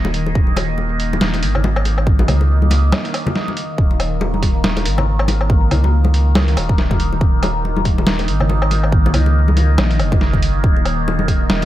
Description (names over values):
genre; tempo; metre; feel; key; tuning
deep dubstep; 140 BPM; 4/4; swing 58% on 16ths, half-time; unclear; A4 = 441 Hz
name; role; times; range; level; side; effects
overtone-sweeping drone; sustained chords; 0.0-11.7 s; Eb3 to Eb5; -22 LUFS; left 1 dB; chorus, built-in reverb, phaser
saturated sub bass; bass; 0.0-11.7 s; Eb1 to Db2; -17 LUFS; equal; none
congas; percussion; 0.0-11.7 s; none; -24 LUFS; left 2 dB; none
trip hop sampler-style drum kit; drums; 0.1-11.7 s; hi-hat, snare drum, woodblock; -21 LUFS; equal; none
electronic kick drum; drums; 0.4-11.4 s; none; -16 LUFS; equal; none
wind-like tuned noise texture; texture; 10.9-11.7 s; Eb5; -30 LUFS; right 4 dB; built-in reverb
room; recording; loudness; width
light reverb; none; -14 LUFS; side -14 dB against mid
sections
0.0-3.8 A section; 3.8-11.7 A section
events
drop 0.0-3.8, 3.8-11.7; break 2.9-3.8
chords
0.0 Eb5